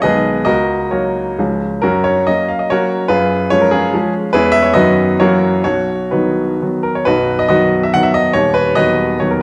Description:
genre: classical, romantic triple-time dance for piano with dotted rhythms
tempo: 118-158 BPM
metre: 3/4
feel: rubato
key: F# major, B major from 4.3 s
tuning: A4 = 440 Hz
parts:
  - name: clear baby grand piano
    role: solo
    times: 0.0-9.4 s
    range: B0 to F#5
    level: -14 LUFS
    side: equal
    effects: none
room: moderate recital hall reverb, RT60 1.5 s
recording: dark, warm production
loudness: -14 LUFS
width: mono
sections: 0.0-7.1 A section; 7.1-9.4 B section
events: none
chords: 0.0 G#m/B; 0.5 F#/C#; 1.4 C#; 1.8 F#; 3.1 C#7/F#; 4.3 C#m7/E; 4.7 B/F#; 5.2 F#7; 5.6 B; 8.4 B/D#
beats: 0.05 | 0.48 0.93 1.39 | 1.84 2.28 2.71 | 3.11 3.52 3.94 | 4.33 4.75 5.20 | 5.65 6.12 6.62 | 7.07 7.51 7.96 | 8.36 8.79 9.22

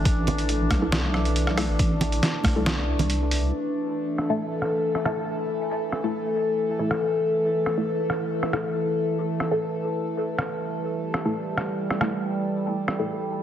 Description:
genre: deep dubstep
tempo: 138 BPM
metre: 4/4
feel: half-time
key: unclear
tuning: A4 = 440 Hz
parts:
  - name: overtone-sweeping drone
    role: sustained chords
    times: 0.0-13.4 s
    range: E3 to A4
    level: -26 LUFS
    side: equal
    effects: chorus, built-in reverb
  - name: deep soft wobble bass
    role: bass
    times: 0.0-3.5 s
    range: A1 to C2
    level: -25 LUFS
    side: equal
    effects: chorus, tube saturation
  - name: electronic kick drum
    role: drums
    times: 0.1-2.5 s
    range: none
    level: -22 LUFS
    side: equal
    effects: overdrive
  - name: trip hop sampler-style drum kit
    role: drums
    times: 0.1-13.0 s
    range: hi-hat, rim click, snare drum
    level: -28 LUFS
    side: equal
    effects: low-pass filter on hats, low-pass filter on snare
  - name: congas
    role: percussion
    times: 0.3-3.1 s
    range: none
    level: -30 LUFS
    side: right 2 dB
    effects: dub echo
  - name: filtered dub chord stab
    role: stabs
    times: 0.8-13.1 s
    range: A3 to A4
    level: -31 LUFS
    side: left 1 dB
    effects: phaser, lush chorus, dub echo
room: wet lush hall reverb, RT60 1.7 s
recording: heavily compressed radio sound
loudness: -23 LUFS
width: side -10 dB against mid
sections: 0.0-3.5 A section; 3.5-13.4 B section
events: none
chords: 0.0 A5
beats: | 0.05 0.49 0.92 1.36 | 1.79 2.23 2.66 3.10 | 3.53 3.97 4.40 4.84 | 5.27 5.71 6.14 6.58 | 7.01 7.45 7.88 8.31 | 8.75 9.19 9.62 10.05 | 10.49 10.92 11.36 11.79 | 12.23 12.66 13.10

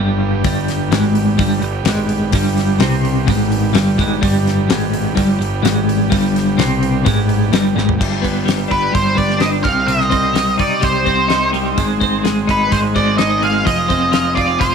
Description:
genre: psychedelic rock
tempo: 127 BPM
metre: 4/4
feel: straight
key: G phrygian dominant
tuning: A4 = 440 Hz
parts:
  - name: combo organ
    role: sustained chords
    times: 0.0-14.7 s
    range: G3 to Ab4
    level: -25 LUFS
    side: right 13 dB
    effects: none
  - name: twelve-string electric guitar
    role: riff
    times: 0.0-14.7 s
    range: G2 to F4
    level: -16 LUFS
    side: equal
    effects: tremolo, double-tracked left and right
  - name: fuzz picked electric bass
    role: bass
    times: 0.0-14.7 s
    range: F1 to C2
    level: -22 LUFS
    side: equal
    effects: overdrive
  - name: damped 70s drum kit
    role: drums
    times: 0.4-14.7 s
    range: crash cymbal, hi-hat, kick drum, snare drum, toms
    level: -20 LUFS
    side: left 4 dB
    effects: none
  - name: octave-fuzz lead guitar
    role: melody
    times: 8.7-14.7 s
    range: B4 to F5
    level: -17 LUFS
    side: right 1 dB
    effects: distortion, tape echo
room: light reverb, studio reverb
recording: 1960s-style stereo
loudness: -13 LUFS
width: side -6 dB against mid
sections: 0.0-8.0 A section; 8.0-14.7 B section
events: drum fill 7.8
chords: 0.0 G; 9.6 Cm; 11.8 Ab; 13.7 Fm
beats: | 0.44 0.91 1.38 1.86 | 2.33 2.80 3.27 3.75 | 4.22 4.69 5.16 5.64 | 6.11 6.58 7.05 7.52 | 8.00 8.47 8.94 9.41 | 9.88 10.35 10.83 11.30 | 11.77 12.24 12.71 13.18 | 13.65 14.12 14.60

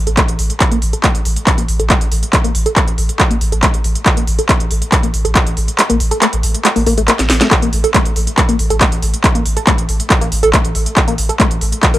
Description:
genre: driving peak-time techno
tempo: 139 BPM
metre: 4/4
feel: straight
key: unclear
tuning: A4 = 441 Hz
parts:
  - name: saturated sub bass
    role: bass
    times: 0.0-12.0 s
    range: A1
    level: -18 LUFS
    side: equal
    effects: overdrive, sidechain pumping, low-pass filter
  - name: tight sequenced synth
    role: riff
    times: 0.1-12.0 s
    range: A3 to A4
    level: -19 LUFS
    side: equal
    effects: chorus, phaser, overdrive, sidechain pumping, tape echo
  - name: techno drum kit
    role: drums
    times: 0.1-12.0 s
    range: handclaps, hi-hat, snare drum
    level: -16 LUFS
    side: equal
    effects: none
  - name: electronic kick drum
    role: drums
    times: 0.2-11.9 s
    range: none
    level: -15 LUFS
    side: equal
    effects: none
room: little or no reverb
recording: dry, gritty hardware recording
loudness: -11 LUFS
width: side -15 dB against mid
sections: 0.0-12.0 A section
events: filter sweep on synth arpeggio sound 0.0-12.0; kick drops out 5.8-7.5; drum fill 7.2-7.5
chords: 0.0 Gmadd9/A (rootless)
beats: 0.17 | 0.61 1.04 1.47 1.90 | 2.33 2.77 3.20 3.63 | 4.06 4.49 4.92 5.35 | 5.79 6.22 6.65 7.08 | 7.51 7.94 8.38 8.81 | 9.24 9.67 10.10 10.53 | 10.97 11.40 11.83

